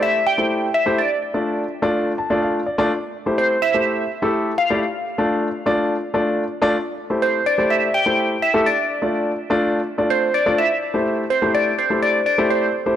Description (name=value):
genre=pop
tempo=125 BPM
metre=4/4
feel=straight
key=D minor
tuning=A4 = 439 Hz
part: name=glassy wavetable pluck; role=melody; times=0.0-12.9 s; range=C5 to G5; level=-19 LUFS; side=right 1 dB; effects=chorus
part: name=warm concert grand piano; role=accompaniment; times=0.0-13.0 s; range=A3 to A5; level=-20 LUFS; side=left 1 dB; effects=none
room=light reverb, small room ambience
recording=dry, gritty hardware recording, cassette tape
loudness=-17 LUFS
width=side -10 dB against mid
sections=0.0-13.0 A section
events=grand piano fill 1.9-2.9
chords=0.0 Am7; 1.0 Dm; 2.9 C6; 4.8 Dm; 6.7 Am7; 8.7 Dm; 10.6 C6